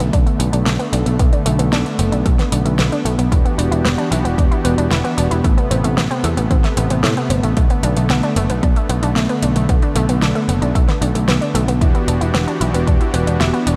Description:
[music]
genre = synthwave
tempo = 113 BPM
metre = 4/4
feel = straight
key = B phrygian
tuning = A4 = 438 Hz
[part]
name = soft supersaw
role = sustained chords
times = 0.0-13.8 s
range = C3 to G4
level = -23 LUFS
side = equal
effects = sidechain pumping
[part]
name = analog pluck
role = arpeggios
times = 0.0-13.8 s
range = A3 to E4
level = -26 LUFS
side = equal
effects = chorus, digital delay
[part]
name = picked electric bass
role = bass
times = 0.0-13.8 s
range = E1 to A2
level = -20 LUFS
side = equal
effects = tube saturation
[part]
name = pop drum kit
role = drums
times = 0.0-13.8 s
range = hi-hat, snare drum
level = -25 LUFS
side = equal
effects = none
[part]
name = electronic kick drum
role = drums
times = 0.1-13.0 s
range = none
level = -18 LUFS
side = equal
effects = none
[sound]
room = light reverb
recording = none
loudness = -16 LUFS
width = mono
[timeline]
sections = 0.0-13.8 A section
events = none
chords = 0.0 Bm7; 3.3 Em7; 5.4 Amadd9; 7.6 Bm7; 11.8 Em7

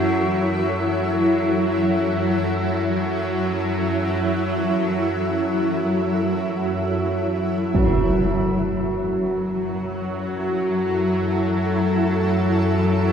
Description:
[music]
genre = dark ambient drone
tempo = free time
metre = none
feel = none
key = F# minor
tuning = A4 = 443 Hz
[part]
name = granular cloud pad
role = sustained chords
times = 0.0-13.1 s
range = F#3 to C#5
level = -22 LUFS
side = equal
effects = built-in reverb
[part]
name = tubular bells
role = arpeggios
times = 0.0-13.1 s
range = F#4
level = -36 LUFS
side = left 1 dB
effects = none
[part]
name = bowed-like drone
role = drone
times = 0.0-13.1 s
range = F#2 to F#3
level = -24 LUFS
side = equal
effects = built-in reverb, phaser
[part]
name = impact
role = percussion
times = 7.7-8.0 s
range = none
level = -24 LUFS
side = right 1 dB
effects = low-pass filter on sfx
[part]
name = bronze singing bowl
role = texture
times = 7.8-13.1 s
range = F#3 to F#4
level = -27 LUFS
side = equal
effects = none
[sound]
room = wet cathedral reverb, RT60 6.6 s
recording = none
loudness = -19 LUFS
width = side -7 dB against mid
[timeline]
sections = 0.0-7.7 A section; 7.7-13.1 B section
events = none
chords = 0.0 F#m

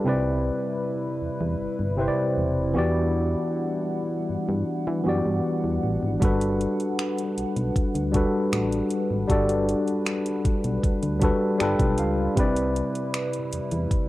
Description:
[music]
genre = contemporary R&B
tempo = 78 BPM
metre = 4/4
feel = straight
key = G major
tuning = A4 = 440 Hz
[part]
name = tine electric piano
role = accompaniment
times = 0.0-14.1 s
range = C3 to G5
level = -25 LUFS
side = equal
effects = medium stereo tremolo, cassette tape
[part]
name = hollow soft pad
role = sustained chords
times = 0.0-14.1 s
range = C3 to F#5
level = -32 LUFS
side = left 1 dB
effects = chorus, cassette tape
[part]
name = solid FM bass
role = bass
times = 0.1-14.0 s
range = E1 to E3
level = -27 LUFS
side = equal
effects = none
[part]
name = smooth R&B drum kit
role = drums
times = 6.2-14.1 s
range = finger snaps, hi-hat, kick drum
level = -26 LUFS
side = equal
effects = cassette tape
[sound]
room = digital ambience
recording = home recording on cassette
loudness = -22 LUFS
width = side -16 dB against mid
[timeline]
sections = 0.0-14.1 A section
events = tine electric piano fill 11.2-12.4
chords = 0.1 Cmaj7; 2.8 Em9; 6.2 Gmaj7; 11.6 G7; 12.4 Cmaj7

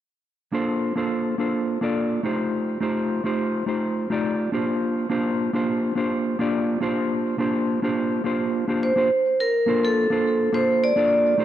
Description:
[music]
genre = chillout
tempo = 105 BPM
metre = 4/4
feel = straight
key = unclear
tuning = A4 = 440 Hz
[part]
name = mellow electric guitar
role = accompaniment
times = 0.5-11.4 s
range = A3 to D5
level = -22 LUFS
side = equal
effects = auto-pan, digital delay
[part]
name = vibraphone with hard mallets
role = melody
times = 8.8-11.4 s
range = A4 to D5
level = -19 LUFS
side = right 1 dB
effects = digital delay
[sound]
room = moderate plate reverb, RT60 2.2 s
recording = none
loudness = -21 LUFS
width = side -12 dB against mid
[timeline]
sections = 0.2-9.4 A section; 9.4-11.4 B section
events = none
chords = 0.2 F9; 4.8 Bb69; 9.4 F

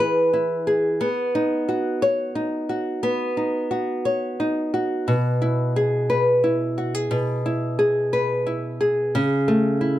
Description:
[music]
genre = pop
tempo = 59 BPM (dotted quarters)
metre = 6/8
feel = straight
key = E major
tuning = A4 = 440 Hz
[part]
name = nylon-string guitar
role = solo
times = 0.0-10.0 s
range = B2 to C#5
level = -20 LUFS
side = equal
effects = none
[sound]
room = small room ambience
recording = dry, close 1970s-style studio recording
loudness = -20 LUFS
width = side -13 dB against mid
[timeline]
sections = 0.0-10.0 A section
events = none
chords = 0.0 E; 1.0 Badd9; 5.1 E/B; 9.1 A/C#

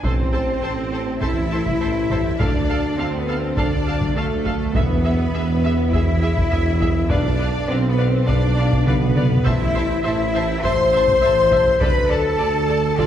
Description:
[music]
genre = cinematic, epic orchestral film score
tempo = 102 BPM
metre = 4/4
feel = straight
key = A minor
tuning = A4 = 441 Hz
[part]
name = rich studio violin section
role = melody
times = 0.0-13.1 s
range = E5 to A5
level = -35 LUFS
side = left 2 dB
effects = none
[part]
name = rich symphonic violin section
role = second line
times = 0.0-13.1 s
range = A4 to C6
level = -30 LUFS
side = left 3 dB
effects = none
[part]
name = rich symphonic viola section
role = accompaniment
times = 0.0-13.1 s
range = G#4 to F5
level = -29 LUFS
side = right 1 dB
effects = none
[part]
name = mellow French horn section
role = sustained chords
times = 0.0-13.1 s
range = A3 to C5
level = -23 LUFS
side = left 3 dB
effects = none
[part]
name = clear tuba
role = bass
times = 0.0-13.1 s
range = E1 to D2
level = -27 LUFS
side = right 1 dB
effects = none
[part]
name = rich studio double bass section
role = bass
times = 0.0-13.1 s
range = A1 to E2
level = -23 LUFS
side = right 2 dB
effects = none
[part]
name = rich symphonic cello section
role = bass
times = 0.0-13.1 s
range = A3 to C5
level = -26 LUFS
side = right 1 dB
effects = none
[part]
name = taiko ensemble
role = drums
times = 0.0-13.1 s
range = none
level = -23 LUFS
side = equal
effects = none
[sound]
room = wet scoring stage reverb, RT60 1.5 s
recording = heard from further back in the room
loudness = -17 LUFS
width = side -10 dB against mid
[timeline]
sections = 0.0-13.1 A section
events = drum fill 8.9-9.5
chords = 0.0 Am; 2.4 Dm; 4.7 E; 7.1 Bdim; 9.5 Am; 11.8 Dm

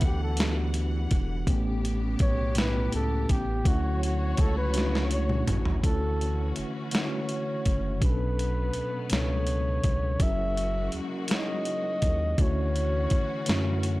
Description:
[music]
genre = slow six-eight R&B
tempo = 55 BPM (dotted quarters)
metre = 6/8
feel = straight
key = unclear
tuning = A4 = 440 Hz
[part]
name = mellow flugelhorn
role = melody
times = 0.0-14.0 s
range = F#4 to E5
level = -33 LUFS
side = equal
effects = none
[part]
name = mellow tine electric piano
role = accompaniment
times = 0.0-14.0 s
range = A2 to C#5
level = -32 LUFS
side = equal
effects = medium stereo tremolo
[part]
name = rich studio string section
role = sustained chords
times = 0.0-14.0 s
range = B2 to F#5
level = -38 LUFS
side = left 2 dB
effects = none
[part]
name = round analog bass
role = bass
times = 0.0-14.0 s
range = E1 to F#2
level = -29 LUFS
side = equal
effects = transformer saturation
[part]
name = dusty soul sampler-style drum kit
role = drums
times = 0.0-14.0 s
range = hi-hat, kick drum, snare drum, toms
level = -27 LUFS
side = equal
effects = none
[sound]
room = digital ambience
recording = dry, gritty hardware recording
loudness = -24 LUFS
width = side -19 dB against mid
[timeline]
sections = 0.0-5.8 A section; 5.8-14.0 B section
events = flugelhorn solo 0.0-5.8; drum fill 4.7-5.8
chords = 0.0 Em9; 1.5 A9; 3.7 Dmaj7; 5.8 Dmaj9; 8.0 Bm9; 10.2 F#13; 12.4 Dmaj9

